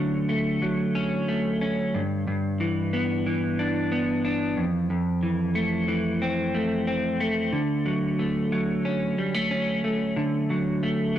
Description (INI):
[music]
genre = indie pop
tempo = 91 BPM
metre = 4/4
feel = straight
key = D major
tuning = A4 = 440 Hz
[part]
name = clean electric guitar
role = solo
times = 0.0-11.2 s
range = F2 to D4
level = -23 LUFS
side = equal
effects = analog chorus, vibrato effect
[sound]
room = moderate small room reverb, RT60 0.6 s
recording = dry, gritty hardware recording, transformer saturation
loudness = -23 LUFS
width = side -11 dB against mid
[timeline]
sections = 0.0-11.2 A section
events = none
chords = 0.0 Dmaj7; 1.9 G6; 4.6 Fmaj7; 7.5 Dmaj7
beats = 0.29 0.95 1.61 | 2.27 2.93 3.58 4.24 | 4.90 5.56 6.22 6.88 | 7.54 8.19 8.85 9.51 | 10.17 10.83